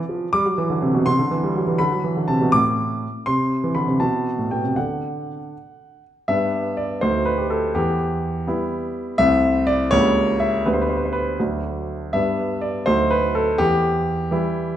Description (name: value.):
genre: classical-period piano sonatina.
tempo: 82 BPM (dotted quarters).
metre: 6/8.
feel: straight.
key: G major.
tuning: A4 = 443 Hz.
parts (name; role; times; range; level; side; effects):
warm grand piano; solo; 0.0-14.8 s; C2 to D6; -18 LUFS; equal; none.
room: wet recital hall reverb, RT60 1.6 s.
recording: minimal, uncompressed stereo recording.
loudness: -18 LUFS.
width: side -11 dB against mid.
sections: 0.0-6.3 A section; 6.3-14.8 B section.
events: none.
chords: 0.3 G; 1.1 C; 1.8 D; 3.3 Cmaj9; 4.0 Am9; 4.8 D; 6.3 G; 7.0 D; 7.7 Em; 9.2 Am/C; 9.9 C#dim7; 10.7 G/D; 11.4 D; 12.1 G; 12.9 D; 13.6 Em.